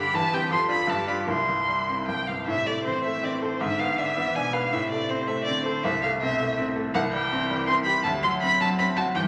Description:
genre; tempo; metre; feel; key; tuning
quick classical-period movement for piano trio; 162 BPM; 3/4; rubato; A minor; A4 = 439 Hz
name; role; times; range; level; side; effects
warm violin; melody; 0.0-9.2 s; C5 to C6; -28 LUFS; equal; none
warm cello; second line; 0.0-9.3 s; A2 to B4; -37 LUFS; equal; none
bright baby grand piano; accompaniment; 0.0-9.3 s; C2 to B4; -29 LUFS; equal; none
room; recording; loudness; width
wet recital hall reverb, RT60 1.6 s; none; -25 LUFS; mono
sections
0.0-2.5 A section; 2.5-9.3 B section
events
none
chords
0.1 C/E; 0.5 Dm/F; 0.9 G7; 1.3 C; 2.5 Am; 3.6 E7/G#; 4.7 Am; 5.8 Am/C; 6.9 C; 8.0 D7

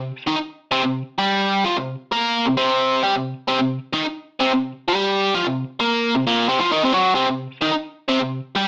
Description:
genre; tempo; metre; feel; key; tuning
rock; 130 BPM; 4/4; straight; unclear; A4 = 440 Hz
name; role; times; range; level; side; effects
biting overdriven guitar; solo; 0.0-8.7 s; Bb2 to Bb4; -17 LUFS; equal; none
room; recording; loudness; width
wet studio reverb, RT60 0.5 s; small speaker sound; -18 LUFS; side -34 dB against mid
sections
0.0-7.2 A section; 7.2-8.7 A section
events
none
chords
0.0 C5

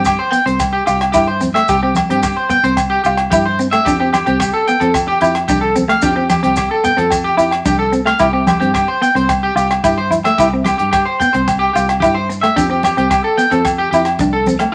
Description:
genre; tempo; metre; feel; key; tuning
highlife guitar band; 110 BPM; 4/4; straight; C major; A4 = 440 Hz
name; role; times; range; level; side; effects
clean electric guitar; accompaniment; 0.0-14.7 s; A3 to G4; -20 LUFS; equal; none
electric guitar at the edge of break-up; arpeggios; 0.0-14.7 s; G4 to G5; -18 LUFS; equal; none
fingered electric bass; bass; 0.0-14.7 s; C2 to G2; -24 LUFS; equal; none
maracas; percussion; 0.0-14.6 s; none; -34 LUFS; equal; none
tight funk drum kit; drums; 0.1-14.7 s; hi-hat, kick drum, rim click; -27 LUFS; equal; none
agogo bells; percussion; 0.1-14.7 s; none; -23 LUFS; equal; none
congas; percussion; 0.3-14.6 s; none; -26 LUFS; equal; none
room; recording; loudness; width
moderate studio reverb, RT60 0.6 s; none; -14 LUFS; mono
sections
0.0-14.7 A section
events
none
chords
0.0 C; 3.9 Fadd9; 8.2 C; 12.6 Fadd9

